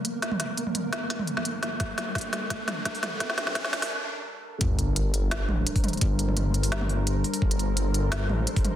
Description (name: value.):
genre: half-time drum and bass.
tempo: 171 BPM.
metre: 4/4.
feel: swing 53% on 16ths, half-time.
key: G minor.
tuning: A4 = 440 Hz.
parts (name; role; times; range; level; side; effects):
deep dark ambient pad; sustained chords; 1.0-8.8 s; G3 to Bb4; -35 LUFS; left 1 dB; chorus, built-in reverb, sidechain pumping.
organic electronic drum kit; drums; 0.0-8.7 s; hi-hat, snare drum, toms; -29 LUFS; equal; overdrive.
riser and sub drop; sound effects; 1.3-6.0 s; none; -36 LUFS; equal; none.
flickering grainy texture; texture; 0.0-8.8 s; Bb3 to C5; -37 LUFS; right 1 dB; built-in reverb.
electronic kick drum; drums; 1.8-8.6 s; none; -26 LUFS; equal; none.
dark detuned saw bass; bass; 4.6-8.5 s; G1 to A1; -26 LUFS; equal; tube saturation.
room: light reverb, digital ambience.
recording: dense, heavily limited modern master, high-pass filter.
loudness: -25 LUFS.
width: side -11 dB against mid.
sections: 0.0-4.6 A section; 4.6-8.8 B section.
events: build-up 0.0-4.6; drum fill 0.0-3.9; riser 1.3-3.9; break 3.9-4.6; drop 4.6-8.8; impact 4.6-6.0.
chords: 0.0 Gm.